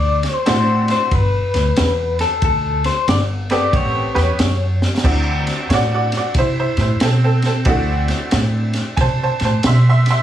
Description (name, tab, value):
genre	electric blues shuffle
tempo	92 BPM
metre	4/4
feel	swing 64% on 8ths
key	D mixolydian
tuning	A4 = 440 Hz
part	electric guitar through a small old amp	melody	0.0-4.8 s	A4 to D5	-19 LUFS	left 4 dB	tremolo, slapback echo
part	upright bass	bass	0.0-10.1 s	G1 to C3	-18 LUFS	equal	none
part	crunchy breakbeat drum kit	drums	0.2-10.2 s	crash cymbal, kick drum, ride cymbal, snare drum	-21 LUFS	equal	none
part	tack piano	accompaniment	0.5-10.2 s	A3 to C6	-20 LUFS	right 2 dB	none
room	light reverb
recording	small room ambience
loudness	-14 LUFS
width	side -11 dB against mid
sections	0.0-5.0 A section; 5.0-10.2 B section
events	drum fill 4.7-5.0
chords	0.0 D9; 1.1 G; 2.4 D5; 3.7 A9; 5.0 D9